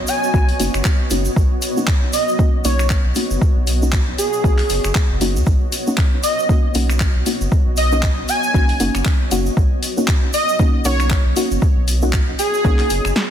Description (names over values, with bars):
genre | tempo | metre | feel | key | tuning
deep house | 117 BPM | 4/4 | swing 57% on 16ths | B major | A4 = 440 Hz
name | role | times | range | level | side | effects
warm sub bass | bass | 0.0-13.1 s | F#1 to D#2 | -20 LUFS | equal | sidechain pumping
granular cloud pad | texture | 0.0-13.2 s | B3 to D#5 | -27 LUFS | equal | built-in reverb, sidechain pumping
airy dreamy lead | melody | 0.1-13.1 s | G#4 to G#5 | -21 LUFS | right 1 dB | chorus, ping-pong delay
deep house drum kit | drums | 0.1-13.3 s | finger snaps, handclaps, hi-hat, snare drum | -24 LUFS | left 2 dB | overdrive
egg shaker | percussion | 0.1-13.1 s | none | -30 LUFS | right 4 dB | none
deep mellow chord stab | stabs | 0.3-12.8 s | A#3 to F#4 | -24 LUFS | equal | chorus, sidechain pumping, digital delay
electronic kick drum | drums | 0.3-12.8 s | none | -16 LUFS | equal | overdrive
room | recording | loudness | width
digital ambience | dense, heavily limited modern master | -15 LUFS | side -10 dB against mid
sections
0.0-13.3 A section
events
filter sweep on synth stab 0.0-13.3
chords
0.0 Bmaj9